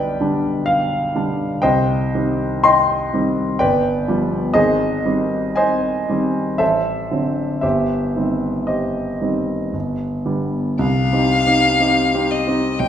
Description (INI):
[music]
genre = classical, romantic duo for violin and grand piano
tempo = 56-64 BPM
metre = 3/4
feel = rubato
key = C minor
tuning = A4 = 440 Hz
[part]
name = clear grand piano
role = accompaniment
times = 0.0-12.9 s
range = G1 to C6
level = -17 LUFS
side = equal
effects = none
[part]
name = rich violin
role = melody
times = 10.8-12.9 s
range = Eb5 to G5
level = -17 LUFS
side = left 4 dB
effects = none
[sound]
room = wet recital hall reverb, RT60 1.4 s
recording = minimal, uncompressed stereo recording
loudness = -16 LUFS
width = side -9 dB against mid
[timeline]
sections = 0.0-10.8 A section; 10.8-12.9 B section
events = none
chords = 0.0 G/B; 1.6 Cm; 3.6 G7; 4.6 Abmaj7; 6.6 D7/A; 7.6 Cm/G; 9.7 G; 10.8 Cm